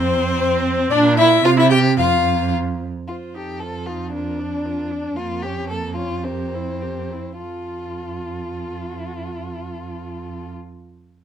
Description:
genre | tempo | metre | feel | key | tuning
quick classical-period movement for string quartet | 101-116 BPM | 2/4 | straight | F major | A4 = 440 Hz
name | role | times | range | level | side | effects
warm violin | melody | 0.0-10.5 s | A4 to G5 | -23 LUFS | left 8 dB | none
warm violin | second line | 0.0-10.5 s | C4 to A4 | -24 LUFS | left 2 dB | none
clear viola | accompaniment | 0.0-10.5 s | Bb3 to G4 | -26 LUFS | right 4 dB | none
warm cello | bass | 0.0-10.5 s | F2 to C3 | -24 LUFS | right 5 dB | none
room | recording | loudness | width
little or no reverb | close, detailed microphones | -18 LUFS | side -9 dB against mid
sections
0.0-3.1 A section; 3.1-7.4 B section; 7.4-9.8 C section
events
slowing down 4.6-7.4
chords
0.0 F5; 0.9 Bb; 1.4 C5; 2.0 N.C.; 3.1 F7; 4.1 Bb/F; 5.2 Bbm/F; 6.2 C7/F; 7.4 F

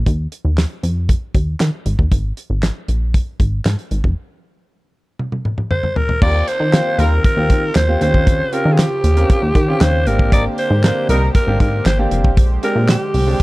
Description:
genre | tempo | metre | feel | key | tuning
early-eighties boogie funk | 117 BPM | 4/4 | straight | Eb major | A4 = 439 Hz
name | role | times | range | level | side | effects
plucky analog bass | bass | 0.0-13.3 s | F1 to Eb3 | -16 LUFS | equal | none
damped 70s drum kit | drums | 0.1-13.4 s | crash cymbal, handclaps, hi-hat, kick drum, snare drum, toms | -16 LUFS | equal | none
breathy alto saxophone | melody | 5.7-13.4 s | G4 to D5 | -20 LUFS | equal | none
mellow horn section | second line | 6.2-7.2, 10.3-11.3 s | G3 to Bb4 | -27 LUFS | equal | none
clear concert grand piano | accompaniment | 6.2-13.4 s | Ab3 to Bb4 | -23 LUFS | equal | none
brassy analog pad | sustained chords | 6.2-13.4 s | Db3 to C5 | -27 LUFS | right 1 dB | chorus
room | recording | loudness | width
small room ambience | dark, warm production | -14 LUFS | side -20 dB against mid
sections
0.0-6.2 A section; 6.2-13.4 B section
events
break 4.2-6.2; drum fill 5.2-6.2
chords
0.0 Ebsus2; 1.9 Absus2; 4.2 N.C.; 6.2 Eb69; 8.0 Eb13; 10.1 Abmaj9#11; 12.4 Bb13

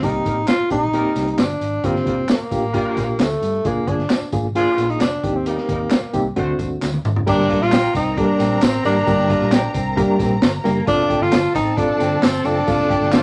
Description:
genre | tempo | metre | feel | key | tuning
uptempo 1960s-style soul | 133 BPM | 4/4 | straight | G minor | A4 = 439 Hz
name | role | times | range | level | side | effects
breathy tenor saxophone | melody | 0.0-13.2 s | A3 to F4 | -23 LUFS | equal | none
clear horn section | second line | 0.0-6.7, 13.1-13.2 s | F3 to C5 | -33 LUFS | equal | none
reed electric piano | accompaniment | 0.0-13.2 s | F3 to Bb4 | -24 LUFS | equal | fast tremolo, tube saturation
vintage muted fingered electric bass | bass | 0.0-13.2 s | F1 to G2 | -29 LUFS | equal | none
crunchy breakbeat drum kit | drums | 0.0-13.2 s | crash cymbal, hi-hat, kick drum, snare drum, toms | -24 LUFS | equal | none
tambourine and handclaps | percussion | 0.0-13.2 s | none | -36 LUFS | equal | none
warm studio string section | second line | 7.3-13.2 s | A4 to Bb5 | -31 LUFS | equal | none
electric guitar through a small old amp | riff | 7.3-13.2 s | Bb3 to G4 | -30 LUFS | equal | tremolo
room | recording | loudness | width
light reverb | vinyl crackle | -19 LUFS | mono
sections
0.0-7.3 A section; 7.3-13.2 B section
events
drum fill 6.8-7.3; band accent 12.7-13.2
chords
0.0 Cm7; 1.8 Gm7; 3.6 Bb7/F; 5.2 Eb6; 6.4 D7; 7.3 Gm; 10.9 F

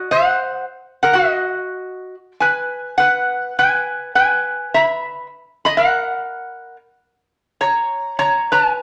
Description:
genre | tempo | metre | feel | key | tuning
hawaiian | 104 BPM | 4/4 | swing 61% on 8ths | unclear | A4 = 440 Hz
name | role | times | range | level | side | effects
lap resonator guitar | solo | 0.0-8.8 s | F#4 to B5 | -18 LUFS | equal | none
room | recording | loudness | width
wet large studio reverb, RT60 0.9 s | none | -18 LUFS | mono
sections
0.0-8.8 A section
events
none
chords
0.1 F#5; 2.4 N.C.; 4.7 Bsus4; 5.9 F#

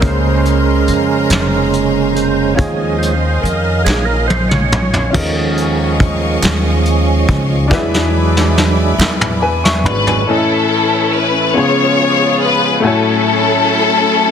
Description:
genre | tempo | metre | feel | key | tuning
slow gospel | 47 BPM (dotted quarters) | 6/8 | straight | A major from 10.3 s | A4 = 440 Hz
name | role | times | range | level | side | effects
warm upright piano | accompaniment | 0.0-14.3 s | A2 to Db6 | -19 LUFS | left 3 dB | none
overdriven tonewheel organ | sustained chords | 0.0-14.3 s | A2 to Db5 | -18 LUFS | right 5 dB | chorus vibrato, slow rotary speaker
rich studio string section | sustained chords | 0.0-10.2 s | C5 to Db6 | -23 LUFS | left 1 dB | none
upright bass | bass | 0.0-10.2 s | F1 to F2 | -17 LUFS | equal | none
vintage brush drum kit | drums | 0.0-10.3 s | crash cymbal, hi-hat, kick drum, snare drum, toms | -17 LUFS | equal | soft clipping on snare
group handclap | percussion | 1.3-9.4 s | none | -23 LUFS | right 6 dB | none
warm studio string section | melody | 9.9-14.3 s | C#4 to C#5 | -13 LUFS | left 4 dB | none
room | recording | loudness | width
light reverb, studio reverb | dense, heavily limited modern master | -11 LUFS | side -8 dB against mid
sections
0.0-5.2 A section; 5.2-10.3 B section; 10.3-14.3 C section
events
tonewheel organ solo 0.0-5.2, 5.2-10.3; drum fill 3.9-5.2, 7.7-10.3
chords
0.0 Bbm9/Db; 2.6 Eb9sus4; 7.7 E7; 10.3 Amaj7; 11.5 C#7; 12.8 F#m9/A

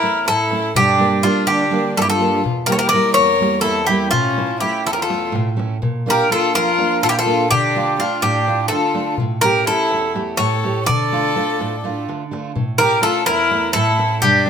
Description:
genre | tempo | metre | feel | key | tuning
greek folk, Greek bouzouki band | 249 BPM (eighths) | 7/8 | straight | unclear | A4 = 440 Hz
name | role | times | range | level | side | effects
Greek bouzouki | melody | 0.0-14.5 s | F4 to D5 | -17 LUFS | equal | none
warm violin | second line | 0.0-14.5 s | C#4 to Bb4 | -22 LUFS | left 5 dB | none
picked steel-string acoustic guitar | accompaniment | 0.0-14.5 s | E2 to G4 | -21 LUFS | right 3 dB | none
darbuka | percussion | 0.0-14.5 s | none | -26 LUFS | left 2 dB | none
room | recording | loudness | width
light reverb | minimal, uncompressed stereo recording | -15 LUFS | side -7 dB against mid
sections
0.0-12.6 A section; 12.6-14.5 A section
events
none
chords
0.0 A; 0.8 Gm; 2.4 Edim; 4.1 A; 5.8 Bb; 7.5 Dm; 9.2 A7; 10.9 Dm; 12.6 A

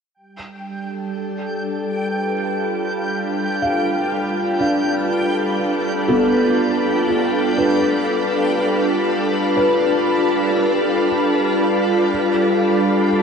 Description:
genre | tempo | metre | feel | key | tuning
ambient | 60 BPM | 3/4 | straight | G mixolydian | A4 = 439 Hz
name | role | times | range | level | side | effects
backwards swelling texture | texture | 0.6-13.2 s | G5 to G6 | -28 LUFS | right 1 dB | built-in reverb
soft additive organ-like pad | sustained chords | 0.6-13.2 s | G3 to B4 | -18 LUFS | equal | ensemble chorus, built-in reverb
felt-muted upright piano | arpeggios | 3.6-13.2 s | B3 to F5 | -22 LUFS | equal | tape echo
room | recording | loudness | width
wet shimmer reverb, RT60 7.3 s | worn, warbling old tape, cassette tape, warbly pitch drift | -16 LUFS | side -6 dB against mid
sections
0.1-12.1 A section; 12.1-13.2 A section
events
fade-out on synth texture 0.1-12.1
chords
0.1 G7

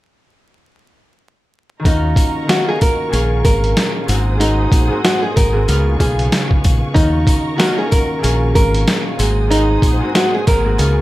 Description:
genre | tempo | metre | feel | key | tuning
hip hop, boom-bap hip-hop | 94 BPM | 4/4 | swing 58% on 16ths | Eb minor | A4 = 441 Hz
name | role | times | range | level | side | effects
concert harp | accompaniment | 1.8-11.0 s | Ab2 to Ab4 | -21 LUFS | equal | high-pass filter, low-pass filter
warm symphonic string section | sustained chords | 1.8-11.0 s | Cb4 to Eb6 | -28 LUFS | equal | high-pass filter, low-pass filter
nylon-string guitar | melody | 1.9-11.0 s | Eb4 to Bb4 | -19 LUFS | equal | high-pass filter, low-pass filter, tape echo
deep dub fingered electric bass | bass | 1.9-11.0 s | Ab1 to Eb2 | -16 LUFS | equal | none
boom bap sampler-style drum kit | drums | 1.9-11.0 s | hi-hat, kick drum, snare drum | -16 LUFS | equal | none
sleigh bells | percussion | 1.9-11.0 s | none | -32 LUFS | left 7 dB | none
room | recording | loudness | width
small room ambience | vinyl crackle | -13 LUFS | side -16 dB against mid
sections
1.9-11.0 A section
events
none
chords
1.9 Ebm7; 3.1 Bbm7; 4.1 Ab7; 5.7 Db7; 7.0 Ebm7; 8.2 Bbm7; 9.2 Ab7

